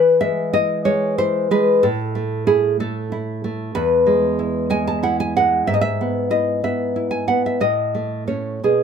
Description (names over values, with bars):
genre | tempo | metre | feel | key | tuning
romantic piece for solo classical guitar | 62 BPM (dotted quarters) | 6/8 | rubato | E major | A4 = 440 Hz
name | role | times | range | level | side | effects
nylon-string guitar | solo | 0.0-8.8 s | E2 to A5 | -17 LUFS | equal | none
room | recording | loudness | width
light reverb | none | -17 LUFS | side -7 dB against mid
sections
0.0-8.8 A section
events
none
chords
0.0 E; 1.8 A5; 3.7 E; 5.7 E/G#; 7.6 A